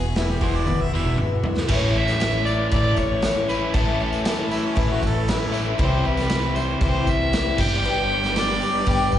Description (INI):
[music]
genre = folk rock and heartland rock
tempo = 117 BPM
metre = 4/4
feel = straight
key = A mixolydian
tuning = A4 = 440 Hz
[part]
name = warm fiddle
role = melody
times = 0.0-9.1 s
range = G#4 to G5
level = -26 LUFS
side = equal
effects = slapback echo
[part]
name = picked twelve-string acoustic guitar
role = accompaniment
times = 0.0-9.2 s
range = E2 to G4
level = -27 LUFS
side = left 6 dB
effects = slapback echo
[part]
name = tonewheel organ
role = sustained chords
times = 0.0-9.2 s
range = G3 to A4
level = -34 LUFS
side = right 1 dB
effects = none
[part]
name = overdriven electric guitar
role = riff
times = 0.0-9.2 s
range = E2 to G4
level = -28 LUFS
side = equal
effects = slapback echo
[part]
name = upright bass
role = bass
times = 0.0-9.2 s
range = E1 to C2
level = -25 LUFS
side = equal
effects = none
[part]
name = clear harmonica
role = second line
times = 0.2-1.2, 4.5-9.1 s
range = C#4 to E5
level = -29 LUFS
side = right 2 dB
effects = slapback echo, tape echo
[part]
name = vintage drum kit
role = drums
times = 0.2-9.2 s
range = crash cymbal, hi-hat, kick drum, snare drum, toms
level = -25 LUFS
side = equal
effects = none
[part]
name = tambourine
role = percussion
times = 1.7-9.2 s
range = none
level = -41 LUFS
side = right 6 dB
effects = none
[sound]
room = light reverb, studio reverb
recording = live gig heard through the venue's PA, recital hall reverb, nothing above 10.5 kHz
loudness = -19 LUFS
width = side -11 dB against mid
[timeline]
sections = 0.0-1.7 A section; 1.7-9.2 B section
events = drum fill 0.7-1.7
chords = 0.0 Eadd9; 1.7 A; 5.8 C; 7.6 G